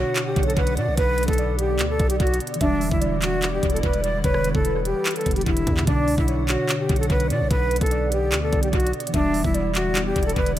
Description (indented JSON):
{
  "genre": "hip hop, trap",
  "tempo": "147 BPM",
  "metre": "4/4",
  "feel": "half-time",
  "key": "B minor",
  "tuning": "A4 = 440 Hz",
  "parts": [
    { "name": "breathy mellow silver concert flute", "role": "melody", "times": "0.0-10.6 s", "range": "D4 to D5", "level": "-25 LUFS", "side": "equal", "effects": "dub echo" },
    { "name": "warm velvety synth lead", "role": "second line", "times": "0.0-10.6 s", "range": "B4 to E5", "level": "-29 LUFS", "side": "equal", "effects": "chorus, dub echo" },
    { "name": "mellow tine electric piano", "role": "accompaniment", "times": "0.0-10.6 s", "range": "B2 to G4", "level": "-30 LUFS", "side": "equal", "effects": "lush chorus, dub echo" },
    { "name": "hollow soft pad", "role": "sustained chords", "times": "0.0-10.6 s", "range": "D3 to F#5", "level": "-31 LUFS", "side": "right 1 dB", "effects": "ensemble chorus" },
    { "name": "hard-hitting 808-style bass", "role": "bass", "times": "0.0-10.6 s", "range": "E1 to B2", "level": "-25 LUFS", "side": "equal", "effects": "none" },
    { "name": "trap drum kit", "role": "drums", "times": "0.2-10.6 s", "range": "handclaps, hi-hat, kick drum, rim click", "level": "-25 LUFS", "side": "equal", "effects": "dub echo" }
  ],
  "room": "light reverb",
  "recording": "echo-heavy mix",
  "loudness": "-19 LUFS",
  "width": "side -13 dB against mid",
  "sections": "0.0-10.6 A section",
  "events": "none",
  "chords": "0.0 Bm; 2.6 Em7; 5.9 Bm; 9.1 Em7"
}